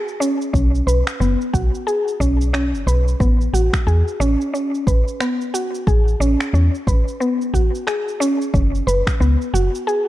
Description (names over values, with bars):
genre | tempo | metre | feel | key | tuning
organic downtempo | 90 BPM | 4/4 | swing 59% on 16ths | unclear | A4 = 441 Hz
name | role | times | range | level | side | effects
mallet-like synth pluck | arpeggios | 0.0-10.1 s | B3 to B4 | -20 LUFS | equal | chorus, tape echo
electronic cabasa and finger snaps | drums | 0.1-10.0 s | none | -29 LUFS | right 1 dB | none
woody FM bass | bass | 0.5-9.7 s | F#1 to E2 | -17 LUFS | equal | none
electronic kick drum | drums | 0.5-9.2 s | none | -19 LUFS | equal | none
room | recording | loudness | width
light reverb, digital ambience | dark, warm production | -16 LUFS | side -15 dB against mid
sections
0.0-10.1 A section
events
none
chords
0.0 B5; 3.2 A; 8.5 F#sus2